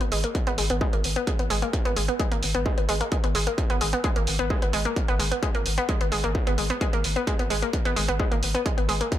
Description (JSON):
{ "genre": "driving peak-time techno", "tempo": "130 BPM", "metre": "4/4", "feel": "straight", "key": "G# minor", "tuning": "A4 = 441 Hz", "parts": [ { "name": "analog pluck", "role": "riff", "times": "0.0-9.1 s", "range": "G#3 to B3", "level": "-26 LUFS", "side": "equal", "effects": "chorus, overdrive, sidechain pumping, ping-pong delay" }, { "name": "warm sub bass", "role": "bass", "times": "0.0-9.0 s", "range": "G#1", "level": "-29 LUFS", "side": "equal", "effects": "overdrive, sidechain pumping, low-pass filter" }, { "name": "electronic hi-hat", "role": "drums", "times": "0.0-9.2 s", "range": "none", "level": "-31 LUFS", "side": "right 2 dB", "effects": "none" }, { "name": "electronic kick drum", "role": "drums", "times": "0.3-9.2 s", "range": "none", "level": "-26 LUFS", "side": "equal", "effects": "distortion" } ], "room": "light reverb, digital ambience", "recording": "none", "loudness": "-22 LUFS", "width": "side -12 dB against mid", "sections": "0.0-9.2 A section", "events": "none", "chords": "0.0 G#madd9" }